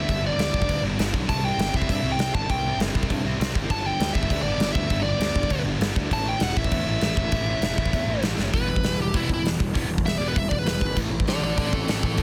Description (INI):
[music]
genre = punk rock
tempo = 198 BPM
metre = 4/4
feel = straight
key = E minor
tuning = A4 = 441 Hz
[part]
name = bluesy overdriven lead guitar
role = melody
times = 0.0-12.2 s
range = C4 to A5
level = -30 LUFS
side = equal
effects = distortion, digital delay
[part]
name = sludgy distorted guitar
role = riff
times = 0.0-12.2 s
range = G2 to E4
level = -31 LUFS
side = equal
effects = overdrive
[part]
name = fuzz picked electric bass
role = bass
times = 0.0-12.2 s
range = E1 to G2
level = -31 LUFS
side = equal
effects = overdrive
[part]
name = big rock drum kit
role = drums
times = 0.1-12.2 s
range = crash cymbal, hi-hat, kick drum, snare drum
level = -28 LUFS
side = equal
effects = none
[sound]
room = little or no reverb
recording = dense, heavily limited modern master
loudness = -24 LUFS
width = mono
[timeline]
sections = 0.0-8.5 A section; 8.5-12.2 B section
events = drum fill 8.4; lead electric guitar solo 8.5-12.2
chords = 0.0 G; 1.3 C; 3.7 G; 6.1 A; 8.5 Em; 11.0 Am